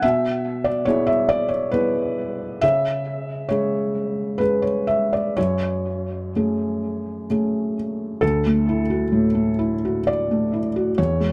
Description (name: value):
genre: neoclassical minimalist piano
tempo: 60-72 BPM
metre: 3/4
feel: rubato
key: unclear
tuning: A4 = 441 Hz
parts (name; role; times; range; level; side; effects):
- felt-muted upright piano; solo; 0.0-11.3 s; D2 to E5; -22 LUFS; equal; tape echo
room: moderate small room reverb, RT60 0.5 s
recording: none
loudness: -22 LUFS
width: mono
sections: 0.0-8.2 A section; 8.2-11.3 B section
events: none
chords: 0.0 E/B; 2.6 C#m; 5.4 F#madd9; 8.2 Dadd9